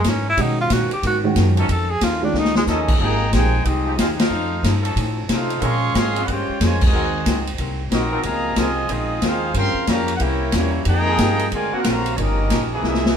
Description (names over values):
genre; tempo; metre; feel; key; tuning
jazz, big band swing; 183 BPM; 4/4; swing 64% on 8ths; F minor; A4 = 441 Hz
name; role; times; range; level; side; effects
breathy tenor saxophone; melody; 0.0-2.6 s; G#3 to A4; -21 LUFS; equal; none
archtop guitar, miked and amplified; accompaniment; 0.0-13.2 s; F2 to C5; -30 LUFS; left 2 dB; none
upright bass; bass; 0.0-13.2 s; G1 to C3; -22 LUFS; equal; none
swinging big-band drum kit; drums; 0.0-13.1 s; crash cymbal, hi-hat, kick drum, ride cymbal, snare drum; -22 LUFS; left 1 dB; none
dark upright piano; accompaniment; 0.4-2.6 s; D#3 to F#4; -23 LUFS; right 3 dB; none
clear trombone section; sustained chords; 1.6-13.1 s; D3 to Bb4; -28 LUFS; equal; none
warm trumpet section; melody; 2.7-13.2 s; Bb3 to Db6; -24 LUFS; equal; none
warm trombone section; second line; 2.7-13.2 s; C3 to G4; -27 LUFS; equal; none
room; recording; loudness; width
moderate studio reverb, RT60 0.7 s; band playing live in one room; -17 LUFS; side -8 dB against mid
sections
0.0-3.0 A section; 3.0-13.2 B section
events
tenor saxophone solo 0.0-3.0; drum fill 2.3-2.7, 12.8-13.2; band accent 4.1, 6.8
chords
0.4 Bmaj9; 1.7 F7alt; 3.0 Fm9; 4.3 F7b13; 5.6 Bbm9; 6.9 Ab9; 8.2 Dbmaj13; 9.5 Gm7b5; 10.2 C7b9; 10.9 Fm9; 11.5 D7alt; 12.2 Gm7b5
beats
0.04 | 0.37 0.70 1.02 1.35 | 1.68 2.01 2.34 2.67 | 2.99 3.32 3.65 3.98 | 4.30 4.63 4.96 5.29 | 5.62 5.94 6.27 6.60 | 6.93 7.25 7.58 7.91 | 8.24 8.56 8.89 9.22 | 9.55 9.88 10.20 10.53 | 10.86 11.19 11.51 11.84 | 12.17 12.49 12.82 13.15